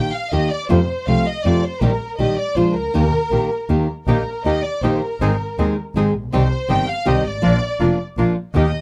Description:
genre	tango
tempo	160 BPM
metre	3/4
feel	rubato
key	Eb major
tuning	A4 = 437 Hz
part	warm symphonic violin section	second line	0.0-8.8 s	Bb4 to G5	-26 LUFS	equal	none
part	nylon-string guitar	accompaniment	0.0-8.6 s	C3 to Ab4	-22 LUFS	equal	none
part	clear double bass	bass	0.0-8.7 s	F1 to F2	-23 LUFS	equal	none
part	bandoneon	stabs	4.1-8.7 s	Bb3 to Ab4	-28 LUFS	equal	none
room	light reverb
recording	dark, warm production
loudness	-19 LUFS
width	mono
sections	0.0-8.8 A section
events	violin section solo 0.0-8.8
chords	0.0 Eb; 0.7 F; 1.8 Eb/Bb; 2.6 Bb7; 2.9 Eb; 5.2 Ab; 6.3 Cm; 7.4 Bb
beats	0.32 | 0.70 1.07 1.45 | 1.82 2.19 2.57 | 2.94 3.32 3.69 | 4.07 4.45 4.83 | 5.20 5.58 5.95 | 6.32 6.69 7.06 | 7.43 7.80 8.18 | 8.56

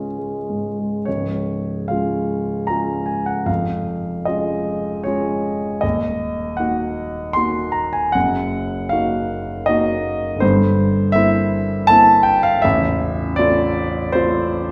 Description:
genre	classical, romantic nocturne for solo piano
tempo	65-83 BPM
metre	3/4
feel	rubato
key	Db major, F major from 10.4 s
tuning	A4 = 439 Hz
part	warm concert grand piano	solo	0.0-14.7 s	A0 to C6	-19 LUFS	equal	none
room	wet recital hall reverb, RT60 1.4 s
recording	recorded in a church or concert hall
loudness	-19 LUFS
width	mono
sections	0.0-1.1 A section; 1.1-14.7 B section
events	none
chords	0.0 Db; 3.5 Db/F; 5.8 Ebm; 8.2 Ebm/Gb; 10.4 C7/G; 12.6 F/A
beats	0.17 | 1.06 1.90 2.69 | 3.48 4.27 5.06 | 5.83 6.60 7.37 | 8.15 8.93 9.68 | 10.42 11.16 11.91 | 12.64 13.39 14.15

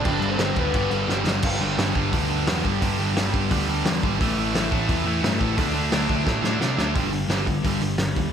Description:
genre	punk rock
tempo	174 BPM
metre	4/4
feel	straight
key	unclear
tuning	A4 = 440 Hz
part	lead guitar through a small cranked amp	melody	0.0-0.9 s	B3 to D5	-29 LUFS	left 1 dB	overdrive, slapback echo
part	distorted electric guitar	riff	0.0-8.3 s	G2 to D4	-27 LUFS	right 10 dB	overdrive, slapback echo
part	sludgy distorted guitar	riff	0.0-8.3 s	G2 to D4	-28 LUFS	left 8 dB	overdrive
part	thick fuzz guitar	riff	0.0-8.3 s	G2 to D4	-30 LUFS	left 1 dB	distortion, slapback echo
part	overdriven picked electric bass	bass	0.0-8.3 s	G1 to C3	-28 LUFS	equal	none
part	loose indie drum kit	drums	0.0-8.2 s	crash cymbal, hi-hat, kick drum, snare drum	-25 LUFS	equal	none
room	moderate recital hall reverb, RT60 1.4 s, small room ambience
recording	big arena sound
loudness	-20 LUFS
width	side -8 dB against mid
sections	0.0-1.4 A section; 1.4-7.0 B section; 7.0-8.3 C section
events	drum fill 1.1-1.4, 6.3-7.0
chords	0.1 G; 1.4 G5; 4.2 A5; 5.6 D5; 7.0 G5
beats	| 0.06 0.40 0.75 1.09 | 1.44 1.78 2.13 2.48 | 2.82 3.17 3.51 3.85 | 4.20 4.54 4.89 5.23 | 5.58 5.92 6.26 6.61 | 6.95 7.30 7.64 7.99

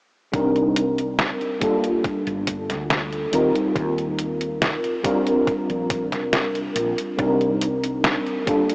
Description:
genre	vaporwave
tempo	70 BPM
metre	4/4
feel	straight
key	C dorian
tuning	A4 = 440 Hz
part	mellow FM electric piano	accompaniment	0.3-8.7 s	G3 to Bb4	-21 LUFS	equal	ensemble chorus, tape echo
part	woody fretless electric bass	bass	0.3-8.2 s	F1 to Eb2	-31 LUFS	equal	none
part	detuned 8-bit digital drum machine	drums	0.3-8.7 s	hi-hat, snare drum	-25 LUFS	equal	vintage 12-bit sampler grit
part	electronic kick drum	drums	0.3-8.7 s	none	-27 LUFS	equal	overdrive, vintage 12-bit sampler grit
room	moderate huge ambient reverb, RT60 5.2 s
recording	worn, warbling old tape, cassette tape, warbly pitch drift, small speaker sound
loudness	-20 LUFS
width	side -26 dB against mid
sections	0.3-8.7 A section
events	none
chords	0.3 Cm9; 1.6 Gm9; 3.3 Eb69; 5.0 Bb69; 7.2 Cm9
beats	| 0.33 1.19 2.05 2.90 | 3.76 4.62 5.47 6.33 | 7.19 8.05

